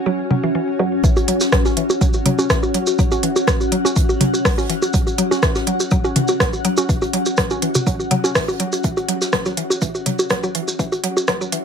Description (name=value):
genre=minimal techno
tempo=123 BPM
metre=4/4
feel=swing 53% on 16ths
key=unclear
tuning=A4 = 440 Hz
part: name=granular cloud pad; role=texture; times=0.0-11.6 s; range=C#4 to G#5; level=-23 LUFS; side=left 2 dB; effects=built-in reverb, sidechain pumping
part: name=mallet-like synth pluck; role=riff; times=0.1-11.6 s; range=E3 to C#4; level=-24 LUFS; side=equal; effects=chorus, sidechain pumping, ping-pong delay
part: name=woody FM bass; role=bass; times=0.1-1.0 s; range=F#1 to F#2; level=-27 LUFS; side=equal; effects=tube saturation, sidechain pumping, high-pass filter
part: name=electronic bongos and toms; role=percussion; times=0.1-11.5 s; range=none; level=-22 LUFS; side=equal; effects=dub echo
part: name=electronic kick drum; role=drums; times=1.0-11.4 s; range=none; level=-19 LUFS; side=equal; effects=none
part: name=jazz brush drum kit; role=drums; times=1.0-11.6 s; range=hi-hat, snare drum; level=-32 LUFS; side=right 4 dB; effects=sidechain pumping on hats, high-pass filter on hats, high-pass filter on snare, high-pass filter on room
part: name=maracas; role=percussion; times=1.0-11.5 s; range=none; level=-27 LUFS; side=right 2 dB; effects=none
part: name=techno drum kit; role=drums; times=1.3-11.6 s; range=hi-hat, rim click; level=-20 LUFS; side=equal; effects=none
room=light reverb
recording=high-pass filter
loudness=-16 LUFS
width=side -7 dB against mid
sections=0.0-1.0 A section; 1.0-11.6 B section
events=filter sweep 0.0-1.0, 1.0-11.6; build-up 1.0-11.6; filter sweep on synth arpeggio sound 1.0-11.6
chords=0.0 F#5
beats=0.06 0.55 | 1.04 1.52 2.01 2.50 | 2.99 3.48 3.96 4.45 | 4.94 5.43 5.92 6.40 | 6.89 7.38 7.87 8.35 | 8.84 9.33 9.82 10.30 | 10.79 11.28